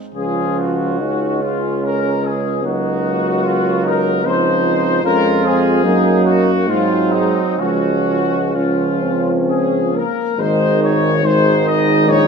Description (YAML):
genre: classical, hymn-like piece for brass band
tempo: 62-76 BPM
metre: 3/4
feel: rubato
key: Db major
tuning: A4 = 440 Hz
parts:
  - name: warm flugelhorn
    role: second line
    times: 0.1-12.3 s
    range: C4 to F4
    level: -22 LUFS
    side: right 10 dB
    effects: none
  - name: warm euphonium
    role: accompaniment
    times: 0.1-12.3 s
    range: Ab3 to Eb4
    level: -22 LUFS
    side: left 3 dB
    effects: none
  - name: warm trombone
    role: accompaniment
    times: 0.1-12.3 s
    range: Eb3 to Ab3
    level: -21 LUFS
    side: right 4 dB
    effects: none
  - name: clear tuba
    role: bass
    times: 0.1-12.3 s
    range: Ab1 to Ab2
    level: -20 LUFS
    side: equal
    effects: none
  - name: clear trumpet section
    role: melody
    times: 0.2-12.3 s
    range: Eb4 to Eb5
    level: -19 LUFS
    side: left 6 dB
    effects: none
room: moderate concert hall reverb, RT60 2.1 s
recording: none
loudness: -14 LUFS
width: side -6 dB against mid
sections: 0.0-10.4 A section; 10.4-12.3 B section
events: none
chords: 0.2 Db; 2.7 Cdim/Db; 5.0 Db/F; 5.9 Ebm/Gb; 6.7 Ab7; 7.6 Db; 10.4 Ab5